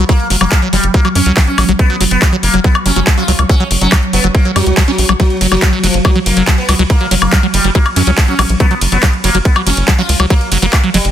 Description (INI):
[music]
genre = psychedelic trance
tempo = 141 BPM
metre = 4/4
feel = straight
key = F# major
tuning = A4 = 441 Hz
[part]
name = swarming drone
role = sustained chords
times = 0.1-11.1 s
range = F#3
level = -21 LUFS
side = equal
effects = built-in reverb, sidechain pumping
[part]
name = liquid acid bass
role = riff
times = 0.0-11.0 s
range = F#3 to C#4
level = -17 LUFS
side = equal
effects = phaser, auto-pan, sidechain pumping, digital delay
[part]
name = tight sequencer bass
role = bass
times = 0.0-11.1 s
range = F#1 to F#2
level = -14 LUFS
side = equal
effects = none
[part]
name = sitar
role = melody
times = 0.1-11.1 s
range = E#3 to E#4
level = -18 LUFS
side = equal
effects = phaser, sidechain pumping, digital delay
[part]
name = drum and bass drum kit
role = drums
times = 0.1-11.1 s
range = handclaps, hi-hat, ride cymbal, woodblock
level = -16 LUFS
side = left 1 dB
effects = overdrive, studio reverb
[part]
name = electronic kick drum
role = drums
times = 0.1-10.8 s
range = none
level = -11 LUFS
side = equal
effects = overdrive, studio reverb
[sound]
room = light reverb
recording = dense, heavily limited modern master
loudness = -9 LUFS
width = side -10 dB against mid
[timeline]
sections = 0.0-11.1 A section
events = none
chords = 0.0 F#5